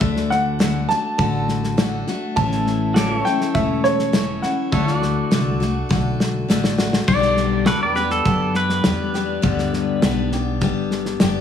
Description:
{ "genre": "honky-tonk and classic country", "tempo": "102 BPM", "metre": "4/4", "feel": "straight", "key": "G major", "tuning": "A4 = 439 Hz", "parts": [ { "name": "warm upright piano", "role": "melody", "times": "0.0-6.5 s", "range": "C#5 to A5", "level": "-23 LUFS", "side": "right 1 dB", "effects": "none" }, { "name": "picked steel-string acoustic guitar", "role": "accompaniment", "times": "0.0-11.4 s", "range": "G2 to G4", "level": "-22 LUFS", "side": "left 5 dB", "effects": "none" }, { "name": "pedal steel guitar", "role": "sustained chords", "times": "0.0-11.4 s", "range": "E4 to D5", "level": "-28 LUFS", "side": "right 2 dB", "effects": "none" }, { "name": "upright bass", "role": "bass", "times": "0.0-11.4 s", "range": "E1 to F#2", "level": "-25 LUFS", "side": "right 1 dB", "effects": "none" }, { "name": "natural country drum kit", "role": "drums", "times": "0.0-11.3 s", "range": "crash cymbal, hi-hat, kick drum, snare drum", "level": "-22 LUFS", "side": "equal", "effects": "none" }, { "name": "pedal steel guitar", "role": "second line", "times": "7.1-10.3 s", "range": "A4 to D5", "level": "-23 LUFS", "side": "right 2 dB", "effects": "none" } ], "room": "light reverb", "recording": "studio ambience", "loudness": "-17 LUFS", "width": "side -8 dB against mid", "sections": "0.0-7.1 A section; 7.1-11.4 B section", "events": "drum fill 5.9-7.1; pedal steel guitar solo 7.1-11.4", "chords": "0.0 D; 2.4 A; 4.7 D; 7.1 G", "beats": "| 0.01 0.60 1.19 1.78 | 2.37 2.96 3.55 4.14 | 4.73 5.32 5.91 6.49 | 7.08 7.67 8.26 8.85 | 9.44 10.03 10.62 11.21" }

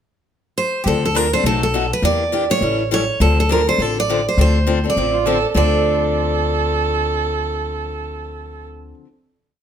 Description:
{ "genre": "acoustic string swing (jazz manouche)", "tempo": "205 BPM", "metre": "4/4", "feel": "swing 60% on 8ths", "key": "D minor", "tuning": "A4 = 440 Hz", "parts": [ { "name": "picked steel-string acoustic guitar", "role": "melody", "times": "0.6-8.9 s", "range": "G4 to D5", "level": "-19 LUFS", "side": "right 3 dB", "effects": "none" }, { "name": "picked steel-string acoustic guitar", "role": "accompaniment", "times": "0.9-9.1 s", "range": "B2 to A4", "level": "-23 LUFS", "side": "left 6 dB", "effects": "none" }, { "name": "upright bass", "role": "bass", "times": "0.9-8.9 s", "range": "A1 to E2", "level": "-21 LUFS", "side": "equal", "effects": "none" }, { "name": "dark violin", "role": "second line", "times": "5.1-8.7 s", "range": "F4 to A4", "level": "-22 LUFS", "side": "right 5 dB", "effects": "none" } ], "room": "moderate studio reverb, RT60 0.8 s", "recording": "none", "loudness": "-15 LUFS", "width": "side -8 dB against mid", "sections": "0.0-0.9 pickup bar; 0.9-5.6 A section; 5.6-7.9 final chord", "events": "none", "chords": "0.0 N.C.; 0.9 Dm7; 1.4 B7; 2.0 Em7b5; 2.6 A7; 3.2 Dm7", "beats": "0.27 0.56 | 0.86 1.15 1.45 1.74 | 2.03 2.33 2.62 2.91 | 3.21 3.50 3.79 4.09 | 4.38 4.67 4.96 5.26 | 5.55 5.84 6.14 6.43 | 6.72 7.02 7.31 7.61" }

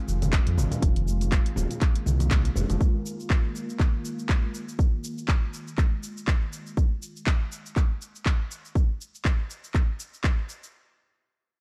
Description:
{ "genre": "afro house", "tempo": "121 BPM", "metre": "4/4", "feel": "swing 56% on 16ths", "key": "F minor", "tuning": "A4 = 441 Hz", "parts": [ { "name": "ethereal airy pad", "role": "sustained chords", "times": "0.0-6.7 s", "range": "Eb3 to F4", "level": "-38 LUFS", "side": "equal", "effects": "ensemble chorus, built-in reverb, sidechain pumping" }, { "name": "round analog bass", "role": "bass", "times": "0.1-2.8 s", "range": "Eb1 to F2", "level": "-28 LUFS", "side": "equal", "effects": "sidechain pumping" }, { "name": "house drum kit", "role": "drums", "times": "0.1-10.7 s", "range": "cabasa, handclaps, hi-hat, toms", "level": "-36 LUFS", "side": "equal", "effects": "none" }, { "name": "congas", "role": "percussion", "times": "0.1-2.8 s", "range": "none", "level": "-37 LUFS", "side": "equal", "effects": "none" }, { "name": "electronic kick drum", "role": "drums", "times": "0.3-10.4 s", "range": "none", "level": "-25 LUFS", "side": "equal", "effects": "none" } ], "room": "digital ambience", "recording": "dark, warm production", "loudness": "-26 LUFS", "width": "mono", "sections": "0.0-10.7 A section", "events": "filter sweep on ambient pad 0.0-6.8", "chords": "0.0 Fm7", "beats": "0.32 | 0.82 1.32 1.81 2.31 | 2.80 3.30 3.79 4.29 | 4.79 5.28 5.78 6.27 | 6.77 7.27 7.76 8.26 | 8.75 9.25 9.74 10.24" }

